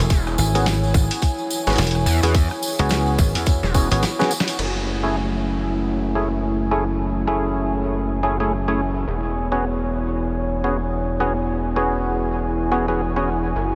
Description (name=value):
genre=glitch hop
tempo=107 BPM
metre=4/4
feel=swing 60% on 16ths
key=unclear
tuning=A4 = 440 Hz
part: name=dark analog pad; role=sustained chords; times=0.0-13.8 s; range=A3 to G#5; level=-29 LUFS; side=equal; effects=chorus, sidechain pumping
part: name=dry thumbed slap bass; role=bass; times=0.0-4.0 s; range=E1 to E2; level=-22 LUFS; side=equal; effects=tube saturation
part: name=gritty driven synth bass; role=bass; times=0.1-13.8 s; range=E1 to E2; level=-26 LUFS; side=equal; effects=tube saturation
part: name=boom bap sampler-style drum kit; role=drums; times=0.1-4.7 s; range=crash cymbal, hi-hat, rim click, snare drum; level=-29 LUFS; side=equal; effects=none
part: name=electronic kick drum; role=drums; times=0.1-3.9 s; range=none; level=-20 LUFS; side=equal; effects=none
part: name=tambourine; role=percussion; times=0.1-4.6 s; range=none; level=-33 LUFS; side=equal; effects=none
part: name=clav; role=stabs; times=0.6-13.3 s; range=A3 to G#4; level=-27 LUFS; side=equal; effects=analog chorus, sidechain pumping, low-pass filter, diffuse ambient delay
room=moderate huge ambient reverb, RT60 7.2 s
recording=dreamy mix soaked in reverb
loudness=-21 LUFS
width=mono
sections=0.0-4.6 A section; 4.6-13.8 B section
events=drum fill 4.0-4.6; band accent 4.4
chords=0.1 E6; 4.6 F#m9; 9.1 E6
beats=| 0.10 0.66 1.22 1.78 | 2.35 2.91 3.47 4.03 | 4.59 5.15 5.71 6.27 | 6.83 7.39 7.95 8.51 | 9.07 9.63 10.20 10.76 | 11.32 11.88 12.44 13.00 | 13.56